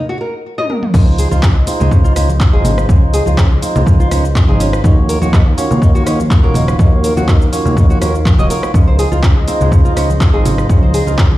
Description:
afro house; 123 BPM; 4/4; swing 53% on 16ths; A4 = 440 Hz
nylon-string guitar; arpeggios; 0.0-11.3 s; Ab3 to Eb5; -21 LUFS; equal; sidechain pumping, ping-pong delay
deep house drum kit; drums; 0.6-11.3 s; crash cymbal, handclaps, hi-hat, rim click, shaker, toms; -23 LUFS; equal; overdrive
dark analog pad; sustained chords; 1.3-11.4 s; Eb4 to F5; -24 LUFS; left 1 dB; chorus, sidechain pumping
tonewheel organ; stabs; 0.9-11.2 s; Eb4 to Db5; -21 LUFS; right 3 dB; stopped rotary speaker, sidechain pumping, ping-pong delay
smooth synth bass; bass; 0.9-11.4 s; Eb1 to Eb2; -15 LUFS; equal; sidechain pumping
electronic kick drum; drums; 0.9-11.3 s; -11 LUFS; equal; overdrive
congas; percussion; 0.9-11.4 s; -20 LUFS; right 2 dB
little or no reverb; played on a big sound system in a bare room, large studio reverb; -10 LUFS; side -16 dB against mid
0.9-11.4 A section
break 0.0-0.9; drum fill 0.6-0.9; drop 0.9-11.4
0.0 Ebm (rootless); 0.9 Dbmaj7; 4.8 Ebm7; 8.7 Dbmaj7
0.45 | 0.94 1.43 1.92 2.41 | 2.89 3.38 3.87 4.36 | 4.84 5.33 5.82 6.31 | 6.80 7.28 7.77 8.26 | 8.75 9.23 9.72 10.21 | 10.70 11.19

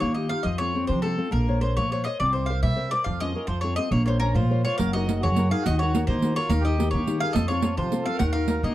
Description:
italian folk, Italian serenade; 140 BPM (dotted quarters); 6/8; rubato; Bb minor; A4 = 442 Hz
mandolin; melody; 0.0-8.7 s; A4 to Gb5; -28 LUFS; left 1 dB
nylon-string guitar; accompaniment; 0.0-8.7 s; C3 to E5; -28 LUFS; left 2 dB
upright bass; bass; 0.0-8.7 s; Gb1 to F3; -25 LUFS; equal
accordion; second line; 4.2-8.7 s; Db4 to Bb4; -33 LUFS; right 4 dB
riq; percussion; 4.8-8.6 s; -27 LUFS; right 2 dB
light reverb; dark, warm production; -22 LUFS; side -14 dB against mid
0.0-8.7 A section
0.5 F; 1.3 Bbmadd9; 2.2 C7; 3.1 Bbm/F; 3.5 F; 3.9 Bbmadd9; 4.8 Gb6; 5.7 Ebm; 6.5 Eb; 7.4 F; 8.2 Ebm
0.02 | 0.45 0.89 | 1.33 1.77 | 2.21 2.63 | 3.06 3.48 | 3.91 4.35 | 4.79 5.22 | 5.65 6.08 | 6.50 6.93 | 7.36 7.78 | 8.21 8.64

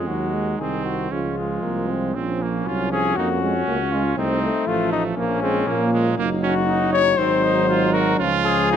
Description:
classical, brass quintet; 118 BPM; 4/4; rubato; A4 = 440 Hz
mellow cornet; melody; 0.0-8.8 s; Db4 to Db5; -23 LUFS; left 7 dB
clear trumpet; second line; 0.0-8.8 s; Ab3 to Gb4; -26 LUFS; right 7 dB
mellow trombone; accompaniment; 0.0-8.8 s; Eb3 to Bb3; -27 LUFS; right 4 dB
warm French horn; accompaniment; 0.0-8.8 s; Ab3 to Eb4; -27 LUFS; left 2 dB
warm tuba; bass; 0.0-8.8 s; Gb1 to Bb2; -26 LUFS; right 3 dB
moderate scoring stage reverb, RT60 1.9 s; close, detailed microphones; -18 LUFS; side -8 dB against mid
0.0-8.8 A section
0.1 Ab7/Eb; 1.1 Db; 2.1 Bbm; 4.2 F7/C; 5.2 Bbm; 6.2 Ebm/Gb; 7.2 Ab7; 8.2 Db
| 0.08 0.60 1.11 1.62 | 2.15 2.66 3.16 3.67 | 4.17 4.67 5.17 5.67 | 6.18 6.69 7.19 7.70 | 8.20 8.71

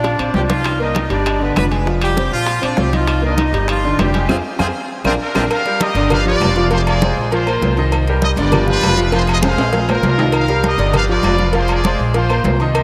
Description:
latin, salsa; 198 BPM; 4/4; straight; A4 = 440 Hz
brilliant horn section; melody; 0.0-5.4 s; F3 to Eb5; -24 LUFS; equal; diffuse ambient delay
clear grand piano; accompaniment; 0.0-12.8 s; D3 to F5; -22 LUFS; equal
upright bass; bass; 0.0-12.8 s; F1 to F2; -21 LUFS; equal
bongos and cowbell; percussion; 0.0-12.8 s; -29 LUFS; equal
congas; percussion; 0.0-12.8 s; -25 LUFS; equal
timbales and agogo bells; percussion; 0.0-12.8 s; -26 LUFS; equal
claves; percussion; 0.2-12.8 s; -35 LUFS; equal
brilliant trumpet section; melody; 5.1-12.7 s; D4 to F5; -22 LUFS; equal; diffuse ambient delay
moderate lush hall reverb, RT60 2.6 s; dreamy mix soaked in reverb; -16 LUFS; mono
0.0-5.5 A section; 5.5-12.8 B section
drum fill 0.0-0.7, 4.9-5.5, 9.4-10.3; band accent 4.3-5.5
0.0 Bbadd9; 0.7 Cm7; 1.3 G7; 1.9 F5; 2.5 Bbadd9; 3.1 Cm7; 3.7 G5; 4.3 Fm; 4.9 Bbadd9; 5.5 Gm7; 6.1 G7; 6.7 Fm; 7.3 Bbsus2; 7.9 Cm7; 8.5 G7; 9.1 Fm; 9.7 Bbadd9; 10.3 Cm7; 10.9 G7; 11.5 Fm; 12.1 Bbsus2
0.05 0.35 | 0.66 0.96 1.26 1.56 | 1.87 2.17 2.47 2.77 | 3.08 3.38 3.68 3.99 | 4.29 4.59 4.89 5.20 | 5.50 5.80 6.10 6.41 | 6.71 7.01 7.31 7.61 | 7.92 8.22 8.52 8.82 | 9.12 9.43 9.73 10.03 | 10.33 10.63 10.94 11.24 | 11.54 11.84 12.15 12.45 | 12.75

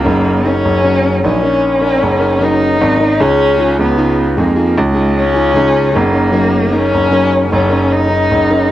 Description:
acoustic pop; 76 BPM; 4/4; straight; F# major; A4 = 440 Hz
warm cello; melody; 0.0-8.7 s; G#3 to D#4; -14 LUFS; left 2 dB; cassette tape, analog delay
fingerpicked plugged-in steel-string acoustic guitar; accompaniment; 0.0-8.7 s; C#3 to A#4; -15 LUFS; right 1 dB; cassette tape
warm concert grand piano; bass; 0.0-8.7 s; F#1 to E#2; -15 LUFS; right 1 dB
little or no reverb; home recording on cassette; -10 LUFS; side -13 dB against mid
0.1-8.7 A section
0.1 F#6; 3.2 C#add9; 6.0 F#6
| 0.05 0.84 1.63 2.41 | 3.20 3.99 4.78 5.56 | 6.35 7.13 7.92 8.71

